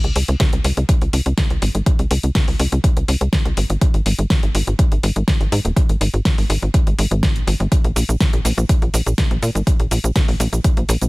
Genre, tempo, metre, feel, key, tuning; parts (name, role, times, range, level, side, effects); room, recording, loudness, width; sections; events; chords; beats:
progressive house; 123 BPM; 4/4; straight; A4 = 438 Hz
tight sequencer bass; bass; 0.0-11.1 s; Eb1 to Bb2; -18 LUFS; equal; sidechain pumping
deep house drum kit; drums; 0.0-11.1 s; cabasa, hi-hat, snare drum; -23 LUFS; equal
electronic kick drum; drums; 0.4-10.7 s; -17 LUFS; equal
little or no reverb; -15 LUFS; side -23 dB against mid
0.0-11.1 A section
0.40 0.89 1.38 | 1.86 2.35 2.84 3.33 | 3.81 4.30 4.79 5.28 | 5.77 6.25 6.74 7.23 | 7.72 8.21 8.69 9.18 | 9.67 10.16 10.64